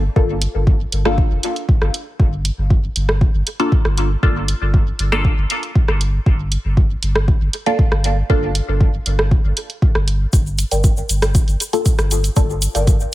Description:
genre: dub techno.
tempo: 118 BPM.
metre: 4/4.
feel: straight.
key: G minor.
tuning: A4 = 440 Hz.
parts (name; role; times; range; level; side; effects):
warm sub bass; bass; 0.0-13.1 s; F1 to G1; -19 LUFS; equal; sidechain pumping.
filtered dub chord stab; stabs; 0.2-8.5, 11.7-12.6 s; Bb3 to A4; -22 LUFS; left 1 dB; phaser, sidechain pumping, dub echo.
electronic kick drum; drums; 0.2-13.0 s; none; -15 LUFS; equal; overdrive, small room ambience.
punchy analog drum machine; drums; 0.4-13.0 s; hi-hat, rim click; -22 LUFS; right 2 dB; small room ambience, dub echo.
egg shaker; percussion; 10.3-13.1 s; none; -27 LUFS; left 2 dB; none.
filtered dub chord stab; riff; 10.7-13.0 s; Bb4 to G5; -24 LUFS; equal; phaser, sidechain pumping, dub echo.
room: little or no reverb.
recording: none.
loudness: -15 LUFS.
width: side -16 dB against mid.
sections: 0.0-13.1 A section.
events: none.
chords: 0.0 Gm7.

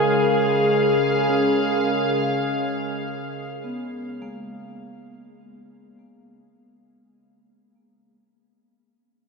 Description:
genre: ambient.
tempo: free time.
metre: none.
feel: none.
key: unclear.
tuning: A4 = 440 Hz.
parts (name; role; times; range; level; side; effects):
evolving wavetable pad; sustained chords; 0.0-7.2 s; C#3 to E#5; -21 LUFS; left 1 dB; chorus, built-in reverb, shimmer reverb.
vibraphone with medium mallets; arpeggios; 0.0-8.1 s; G#3 to A#4; -28 LUFS; right 2 dB; ping-pong delay.
room: wet huge ambient reverb, RT60 7.8 s.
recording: none.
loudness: -20 LUFS.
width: side -4 dB against mid.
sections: 0.0-7.2 A section.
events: fade-out 0.0-7.2.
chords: 0.0 C#.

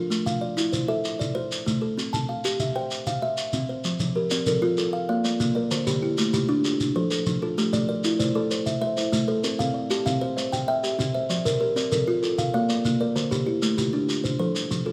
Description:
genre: southern african traditional, mbira-style interlocking cycle.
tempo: 129 BPM (dotted quarters).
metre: 12/8.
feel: straight.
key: F major.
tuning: A4 = 440 Hz.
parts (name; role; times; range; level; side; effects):
kalimba; arpeggios; 0.0-14.9 s; D3 to A5; -27 LUFS; equal; none.
shekere; percussion; 0.1-14.9 s; none; -31 LUFS; equal; none.
kalimba; arpeggios; 4.0-14.9 s; D3 to A5; -32 LUFS; equal; none.
room: moderate recital hall reverb, RT60 1.6 s.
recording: none.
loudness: -25 LUFS.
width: mono.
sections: 0.0-3.8 A section; 3.8-14.9 A section.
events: none.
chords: 0.1 Am; 2.0 C; 3.8 F; 4.8 Bb; 5.7 Dm; 6.6 F; 7.6 Am; 9.4 C; 11.3 F; 12.2 Bb; 13.2 Dm; 14.1 F.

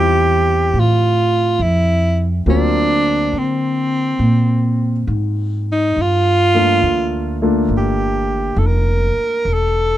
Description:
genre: jazz ballad.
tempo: 69 BPM.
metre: 4/4.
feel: swing 67% on 8ths.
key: unclear.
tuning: A4 = 442 Hz.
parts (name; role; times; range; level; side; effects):
bright alto saxophone; melody; 0.0-10.0 s; C4 to Bb4; -17 LUFS; right 1 dB; none.
warm baby grand piano; accompaniment; 0.0-9.5 s; F#3 to F4; -22 LUFS; left 1 dB; none.
upright bass; bass; 0.0-10.0 s; E1 to D3; -17 LUFS; equal; none.
room: little or no reverb.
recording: close, detailed microphones.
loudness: -14 LUFS.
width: side -13 dB against mid.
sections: 0.0-10.0 A section.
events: none.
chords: 0.0 Dm11 (rootless); 2.5 D7alt; 6.0 Gm9; 9.5 N.C..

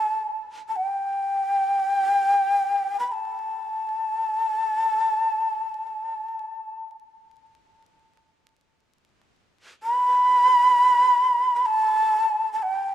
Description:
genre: japanese traditional, Japanese chamber music.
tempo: free time.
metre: none.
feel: none.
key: unclear.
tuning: A4 = 440 Hz.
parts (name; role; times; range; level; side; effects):
breathy mellow shakuhachi; solo; 0.0-12.9 s; G5 to B5; -20 LUFS; equal; none.
room: moderate plate reverb, RT60 3.4 s.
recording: heard from further back in the room, vinyl crackle.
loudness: -20 LUFS.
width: side -11 dB against mid.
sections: 0.0-12.9 A section.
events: none.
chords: none.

